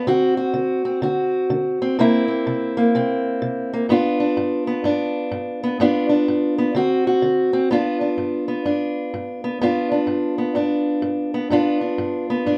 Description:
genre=blues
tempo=126 BPM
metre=4/4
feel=swing 63% on 8ths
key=G mixolydian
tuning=A4 = 440 Hz
part: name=fingerpicked steel-string acoustic guitar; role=solo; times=0.0-12.6 s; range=G2 to F#4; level=-21 LUFS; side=equal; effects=none
room=light reverb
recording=none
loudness=-21 LUFS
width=mono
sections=0.0-7.7 A section; 7.7-12.6 B section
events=none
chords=0.1 D7; 2.0 C7; 3.9 G7; 6.7 D7; 7.7 G7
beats=| 0.07 0.55 1.02 1.50 | 1.98 2.46 2.93 3.41 | 3.88 4.36 4.84 5.31 | 5.79 6.27 6.74 7.22 | 7.70 8.17 8.65 9.13 | 9.61 10.08 10.56 11.04 | 11.51 11.99 12.46

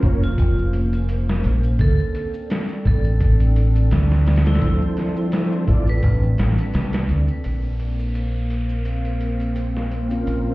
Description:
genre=trip hop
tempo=85 BPM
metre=4/4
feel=swing 55% on 16ths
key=unclear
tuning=A4 = 440 Hz
part: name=mellow tonewheel organ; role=accompaniment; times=0.0-10.5 s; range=F3 to D5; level=-26 LUFS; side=equal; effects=chorus vibrato, slow rotary speaker, harmonic tremolo, tape echo
part: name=warbly tape-like pad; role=sustained chords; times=0.0-10.5 s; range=Bb3 to F5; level=-29 LUFS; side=left 1 dB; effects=chorus, built-in reverb
part: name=deep dub fingered electric bass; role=bass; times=0.0-10.5 s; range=F1 to D2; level=-18 LUFS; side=equal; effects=none
part: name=trip hop sampler-style drum kit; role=drums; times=0.0-10.5 s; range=hi-hat, kick drum, snare drum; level=-22 LUFS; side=equal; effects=high-pass filter on kick, high-pass filter on hats, high-pass filter on snare, high-pass filter on room
part: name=vibraphone with hard mallets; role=melody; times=0.2-6.3 s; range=E4 to Cb5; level=-32 LUFS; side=right 2 dB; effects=tape echo
part: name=maracas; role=percussion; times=0.2-10.5 s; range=none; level=-56 LUFS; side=left 1 dB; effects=none
part: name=downlifter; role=sound effects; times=7.4-10.5 s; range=none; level=-43 LUFS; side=equal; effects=none
part: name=bowed-like drone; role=texture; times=7.9-10.5 s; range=C4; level=-34 LUFS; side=equal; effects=built-in reverb, phaser
room=little or no reverb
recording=heard muffled through a wall, stone room reverb, EQ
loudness=-17 LUFS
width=side -19 dB against mid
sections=0.0-7.4 A section; 7.4-10.5 B section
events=none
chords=0.0 Bbmadd9; 1.8 Dm7; 7.4 Bbmadd9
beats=0.38 1.09 | 1.79 2.50 3.21 3.91 | 4.62 5.32 6.03 6.74 | 7.44 8.15 8.85 9.56 | 10.27

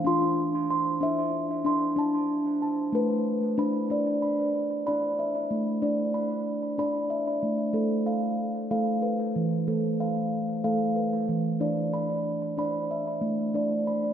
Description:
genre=world meditative, meditative tuned percussion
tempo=62 BPM (dotted quarters)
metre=6/8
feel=straight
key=D kumoi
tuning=A4 = 439 Hz
part: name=steel tongue drum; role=solo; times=0.0-14.1 s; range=E3 to C6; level=-25 LUFS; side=equal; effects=tape echo
room=wet plate reverb, RT60 3.4 s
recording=echo-heavy mix, nothing above 8.0 kHz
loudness=-25 LUFS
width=side -9 dB against mid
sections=0.0-3.9 A section; 3.9-14.1 B section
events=none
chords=0.1 Dm9; 2.0 D5; 7.7 A5; 11.6 D5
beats=| 0.07 1.02 | 1.98 2.94 | 3.90 4.86 | 5.82 6.78 | 7.74 8.71 | 9.67 10.64 | 11.61 12.58 | 13.54

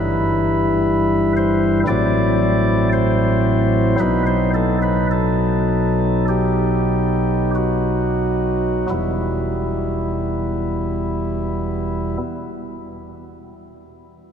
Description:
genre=classical, chorale-style piece for pipe organ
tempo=43-62 BPM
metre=4/4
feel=rubato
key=E minor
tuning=A4 = 440 Hz
part: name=chamber organ, flutes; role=solo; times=0.0-12.2 s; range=E1 to D5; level=-17 LUFS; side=equal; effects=none
room=wet cathedral reverb, RT60 5.9 s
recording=none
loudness=-16 LUFS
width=side -8 dB against mid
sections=0.0-8.9 A section; 8.9-14.2 B section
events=slowing down 0.0-8.9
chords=0.0 Em/G; 1.9 F#m7b5/A; 4.0 B7; 8.9 Em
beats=0.87 1.87 2.92 | 3.99 5.11 6.28 7.54 | 8.90 10.23 11.57

